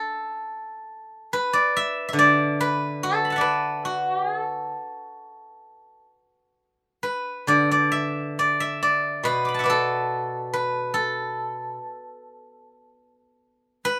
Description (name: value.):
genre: chinese traditional, Chinese solo plucked strings.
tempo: 62-74 BPM.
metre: 4/4.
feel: rubato.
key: A zhi mode.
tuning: A4 = 440 Hz.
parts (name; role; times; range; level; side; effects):
steel-string zither; solo; 0.0-14.0 s; B2 to D6; -24 LUFS; equal; none.
room: light reverb.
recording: none.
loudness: -24 LUFS.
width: mono.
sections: 0.0-7.5 A section; 7.5-14.0 B section.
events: none.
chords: none.